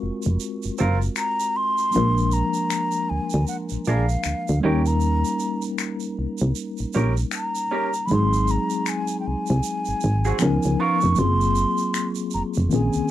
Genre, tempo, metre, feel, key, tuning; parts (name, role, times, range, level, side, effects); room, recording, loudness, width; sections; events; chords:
R&B, neo-soul; 78 BPM; 4/4; swing 60% on 16ths; A4 = 441 Hz
mellow tine electric piano; accompaniment; 0.0-13.1 s; Eb3 to Bb4; -26 LUFS; left 2 dB; medium stereo tremolo
solid FM bass; bass; 0.0-13.0 s; F1 to Eb2; -21 LUFS; equal
egg shaker and finger snaps; percussion; 0.2-13.1 s; -33 LUFS; left 1 dB
electric guitar through a small old amp; second line; 0.8-11.0 s; Cb4 to Bb4; -26 LUFS; right 4 dB
mellow hollow concert flute; melody; 1.2-13.1 s; F5 to Db6; -25 LUFS; equal
little or no reverb; dry, close 1970s-style studio recording; -20 LUFS; side -13 dB against mid
0.0-13.1 A section
0.0 Gbmaj9#11; 1.9 Bb7; 4.6 Eb7; 8.1 Ab7; 10.4 Db13; 11.2 Gbmaj9#11